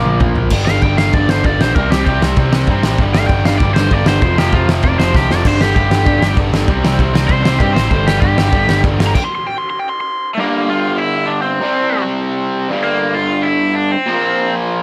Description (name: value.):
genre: punk rock.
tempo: 195 BPM.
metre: 4/4.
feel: straight.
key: G minor, G dorian from 10.4 s.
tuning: A4 = 442 Hz.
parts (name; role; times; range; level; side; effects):
overdriven electric guitar; melody; 0.0-14.5 s; A3 to C6; -20 LUFS; equal; none.
raw garage guitar; riff; 0.0-14.8 s; F2 to C4; -20 LUFS; equal; overdrive.
overdriven picked electric bass; bass; 0.0-9.1 s; F1 to G2; -19 LUFS; equal; none.
loose indie drum kit; drums; 0.1-9.2 s; crash cymbal, kick drum, ride cymbal, snare drum, toms; -18 LUFS; equal; none.
room: light reverb.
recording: none.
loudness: -14 LUFS.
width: mono.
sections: 0.5-10.4 A section; 10.4-14.8 B section.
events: drum fill 0.0-0.5, 5.1-5.5; overdriven electric guitar solo 0.5-10.4; stop 9.2-10.4.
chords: 0.0 Bb; 0.5 G5; 1.8 C5; 3.0 G5; 4.2 F5; 5.5 G5; 6.7 C5; 7.9 G5; 9.2 N.C.; 10.4 Gm; 11.6 C5; 12.7 Gm; 14.1 Bb5.